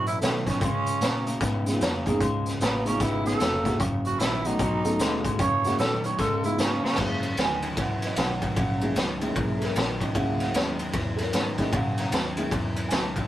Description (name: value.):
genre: electric blues shuffle.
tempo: 151 BPM.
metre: 4/4.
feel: swing 63% on 8ths.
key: F# mixolydian.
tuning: A4 = 439 Hz.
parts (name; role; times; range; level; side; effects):
growling tenor saxophone; second line; 0.0-7.0 s; A3 to C#5; -28 LUFS; right 2 dB; none.
electric guitar through a small old amp; riff; 0.0-13.3 s; F#2 to B3; -30 LUFS; left 1 dB; none.
vintage muted fingered electric bass; bass; 0.0-13.3 s; E#1 to C#3; -34 LUFS; equal; none.
raw garage drum kit; drums; 0.1-13.2 s; crash cymbal, hi-hat, kick drum, ride cymbal, snare drum; -27 LUFS; equal; none.
dark upright piano; accompaniment; 1.7-13.3 s; G#3 to A#5; -30 LUFS; right 1 dB; none.
room: moderate booth ambience, RT60 0.2 s.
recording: rough rehearsal-room recording, lossy compression artefacts.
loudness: -23 LUFS.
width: side -13 dB against mid.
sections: 0.0-7.0 A section; 7.0-13.3 A section.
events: tenor saxophone solo 0.0-7.0; drum fill 6.8.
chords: 0.0 F#7; 0.6 C#7; 3.8 F#; 4.6 B7; 5.4 F#7; 6.2 C#7; 7.0 F#7.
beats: 0.22 | 0.62 1.02 1.42 1.81 | 2.21 2.61 3.01 3.41 | 3.80 4.20 4.60 5.00 | 5.39 5.79 6.19 6.59 | 6.98 7.38 7.78 8.17 | 8.57 8.96 9.36 9.76 | 10.15 10.54 10.94 11.33 | 11.73 12.12 12.52 12.91.